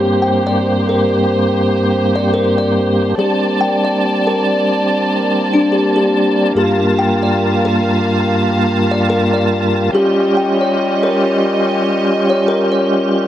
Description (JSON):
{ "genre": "trip hop", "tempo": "71 BPM", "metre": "4/4", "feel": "swing 57% on 16ths", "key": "G minor", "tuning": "A4 = 440 Hz", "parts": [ { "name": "tonewheel organ", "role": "accompaniment", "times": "0.0-13.3 s", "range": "G2 to A5", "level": "-14 LUFS", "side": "equal", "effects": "chorus vibrato, fast rotary speaker, tremolo, tape echo" }, { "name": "warm studio violin section", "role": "sustained chords", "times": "0.0-13.3 s", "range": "G3 to A5", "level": "-20 LUFS", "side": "equal", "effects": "none" }, { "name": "music box", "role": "arpeggios", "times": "0.0-13.3 s", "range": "D4 to G5", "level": "-19 LUFS", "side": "left 2 dB", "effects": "low-pass filter, tape echo" } ], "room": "moderate spring reverb, RT60 1.8 s, studio reverb", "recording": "vinyl crackle", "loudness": "-12 LUFS", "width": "side -12 dB against mid", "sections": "0.0-13.3 A section", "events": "none", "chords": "0.0 Gmadd11; 3.2 Bbmaj7/G; 6.6 Gm7; 9.9 Eb7/G", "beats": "0.65 1.50 2.34 | 3.19 4.03 4.88 5.72 | 6.57 7.41 8.26 9.10 | 9.95 10.79 11.63 12.48" }